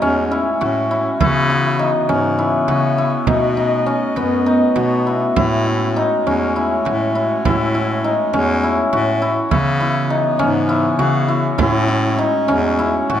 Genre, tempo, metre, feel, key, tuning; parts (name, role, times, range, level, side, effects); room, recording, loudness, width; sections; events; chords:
contemporary instrumental, chamber music in an uneven meter; 203 BPM (eighths); 7/8; straight; A lydian; A4 = 440 Hz
clear woodwind section; sustained chords; 0.0-13.2 s; C#3 to D#5; -24 LUFS; right 2 dB
cimbalom; arpeggios; 0.0-13.2 s; B3 to F#4; -17 LUFS; left 1 dB
breathy bass clarinet; bass; 0.0-13.2 s; E2 to C#3; -20 LUFS; left 1 dB
frame drum; percussion; 0.0-13.2 s; -22 LUFS; right 5 dB
light reverb; close, detailed microphones; -15 LUFS; side -10 dB against mid
0.0-13.2 A section
0.0 Amaj7; 1.2 C#m7; 3.3 B7; 5.4 Amaj7; 9.5 C#m7; 11.6 Amaj7